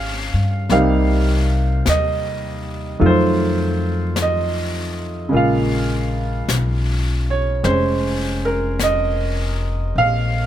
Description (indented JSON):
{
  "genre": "jazz ballad",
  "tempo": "52 BPM",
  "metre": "4/4",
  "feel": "swing 68% on 8ths",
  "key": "Bb minor",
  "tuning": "A4 = 439 Hz",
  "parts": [
    { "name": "bright upright piano", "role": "accompaniment", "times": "0.0-10.5 s", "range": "C3 to Ab5", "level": "-19 LUFS", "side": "right 2 dB", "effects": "none" },
    { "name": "upright bass", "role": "bass", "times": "0.0-10.5 s", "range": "F1 to G2", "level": "-20 LUFS", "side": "left 1 dB", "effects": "none" },
    { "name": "jazz brush drum kit", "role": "drums", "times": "0.7-10.5 s", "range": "brushed snare drum, hi-hat, snare drum", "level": "-29 LUFS", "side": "left 4 dB", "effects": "none" }
  ],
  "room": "little or no reverb",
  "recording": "none",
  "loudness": "-16 LUFS",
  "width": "side -11 dB against mid",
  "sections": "0.0-10.5 A section",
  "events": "none",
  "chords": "0.0 Db69; 0.7 Cm7; 3.0 F7b9; 5.3 Bbm7"
}